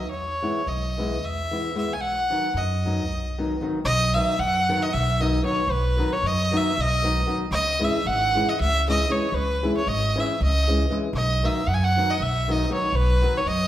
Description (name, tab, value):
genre	balkan folk, Balkan wedding band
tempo	230 BPM (eighths)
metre	7/8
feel	straight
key	B major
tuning	A4 = 441 Hz
part	rich violin	melody	0.0-13.7 s	B4 to G#5	-24 LUFS	equal	none
part	flamenco guitar	accompaniment	0.0-13.4 s	D#3 to E4	-28 LUFS	left 2 dB	none
part	upright bass	bass	0.0-13.7 s	G#1 to F#2	-25 LUFS	equal	none
room	wet recital hall reverb, RT60 1.4 s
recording	recorded in a church or concert hall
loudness	-21 LUFS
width	side -12 dB against mid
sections	0.0-3.8 A section; 3.8-13.7 B section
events	speeding up 0.0-13.7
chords	0.1 E; 2.0 B; 7.5 C#m; 11.1 B